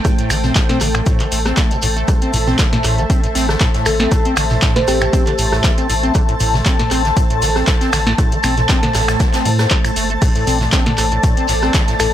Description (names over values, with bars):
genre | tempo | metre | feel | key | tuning
acid house | 118 BPM | 4/4 | swing 54% on 16ths | A minor | A4 = 441 Hz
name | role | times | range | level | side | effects
lush unison pad | sustained chords | 0.0-12.1 s | A3 to A5 | -23 LUFS | equal | chorus, phaser, sidechain pumping
acid bass, square | riff | 0.0-12.1 s | A2 to C4 | -22 LUFS | equal | tube saturation, wide subtle chorus, cassette tape, analog delay
booming analog drum machine | drums | 0.0-12.1 s | crash cymbal, finger snaps, handclaps, hi-hat, rim click, snare drum, toms | -20 LUFS | equal | none
electronic kick drum | drums | 0.0-11.9 s | none | -16 LUFS | equal | none
shekere | percussion | 0.0-12.1 s | none | -30 LUFS | right 5 dB | none
granular cloud pad | texture | 0.0-12.1 s | A5 | -22 LUFS | left 2 dB | built-in reverb, sidechain pumping
shaker and snare drum | drums | 0.1-12.1 s | none | -30 LUFS | left 1 dB | high-pass filter on snare, high-pass filter on perc, high-pass filter on room
warm sub bass | bass | 0.3-12.1 s | G1 to A2 | -19 LUFS | equal | sidechain pumping
thumb-piano-like synth pluck | melody | 3.9-5.1, 12.0-12.1 s | G4 to C5 | -20 LUFS | equal | chorus, analog delay
room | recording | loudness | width
digital ambience | transformer saturation | -13 LUFS | side -11 dB against mid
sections
0.0-12.1 A section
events
none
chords
0.0 Am